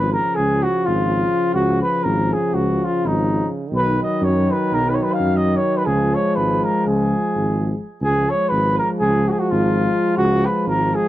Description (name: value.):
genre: balkan folk, Balkan brass band.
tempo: 250 BPM (eighths).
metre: 9/8.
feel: straight.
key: Db mixolydian.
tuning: A4 = 440 Hz.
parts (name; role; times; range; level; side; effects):
mellow flugelhorn; melody; 0.0-11.1 s; Eb4 to F5; -20 LUFS; equal; none.
clear trombone; accompaniment; 0.0-11.1 s; Db3 to F3; -26 LUFS; right 4 dB; none.
mellow euphonium; accompaniment; 0.0-11.1 s; F3 to Ab3; -24 LUFS; left 4 dB; none.
mellow tuba; bass; 0.0-10.9 s; Ab1 to Gb2; -21 LUFS; equal; none.
room: little or no reverb.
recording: dry, close 1970s-style studio recording.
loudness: -16 LUFS.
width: side -14 dB against mid.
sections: 0.0-8.0 A section; 8.0-11.1 A section.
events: none.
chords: 0.0 Db; 3.7 Cb; 5.9 Db.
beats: 0.09 0.33 0.57 0.81 1.06 1.30 | 1.54 1.78 2.02 2.26 2.50 2.74 2.98 3.22 3.46 | 3.71 3.94 4.18 4.43 4.67 4.91 5.15 5.39 5.63 | 5.87 6.11 6.35 6.58 6.83 7.06 7.30 7.54 7.78 | 8.02 8.26 8.50 8.74 8.97 9.21 9.45 9.69 9.93 | 10.16 10.40 10.64 10.88.